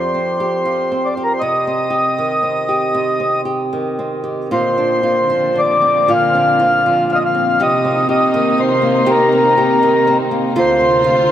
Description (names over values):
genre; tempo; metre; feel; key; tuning
celtic folk, Celtic slow air; 39 BPM (dotted quarters); 6/8; uneven beats, rubato; C minor; A4 = 440 Hz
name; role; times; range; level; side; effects
mellow accordion; melody; 0.0-11.3 s; Bb4 to F5; -14 LUFS; left 1 dB; none
flamenco guitar; accompaniment; 0.0-11.3 s; F2 to G4; -18 LUFS; right 1 dB; none
warm symphonic string section; sustained chords; 4.5-11.3 s; D2 to F4; -23 LUFS; left 2 dB; none
room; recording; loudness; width
wet cathedral reverb, RT60 6.8 s; none; -13 LUFS; side -11 dB against mid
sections
0.0-4.5 A section; 4.5-11.3 B section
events
none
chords
0.0 Fsus2; 1.4 Cm; 4.5 Bbadd9; 7.6 Cm7; 10.6 Dm7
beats
| 1.41 2.94 | 4.51 6.09 | 7.60 9.09 | 10.58